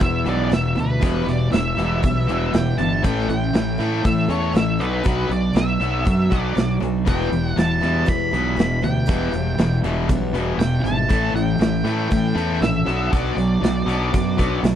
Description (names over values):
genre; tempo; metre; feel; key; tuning
classic rock; 119 BPM; 4/4; straight; E dorian; A4 = 441 Hz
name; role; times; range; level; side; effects
octave-fuzz lead guitar; melody; 0.0-14.6 s; B4 to B5; -26 LUFS; right 2 dB; distortion, slapback echo
picked twelve-string acoustic guitar; accompaniment; 0.0-14.8 s; E2 to F#4; -30 LUFS; left 5 dB; none
distorted electric guitar; riff; 0.0-14.8 s; E2 to B3; -25 LUFS; left 10 dB; distortion
distorted electric guitar; riff; 0.0-14.8 s; E2 to B3; -25 LUFS; right 9 dB; distortion
fuzz fingered electric bass; bass; 0.0-14.8 s; E1 to A2; -24 LUFS; equal; overdrive
big rock drum kit; drums; 0.0-14.8 s; hi-hat, kick drum, snare drum; -22 LUFS; equal; vintage 12-bit sampler grit
room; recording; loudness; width
little or no reverb; dry, close 1970s-style studio recording; -18 LUFS; side -10 dB against mid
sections
0.0-14.8 A section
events
none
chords
0.0 Em; 3.0 A; 4.8 Bm; 7.1 Em; 11.1 A; 12.9 Bm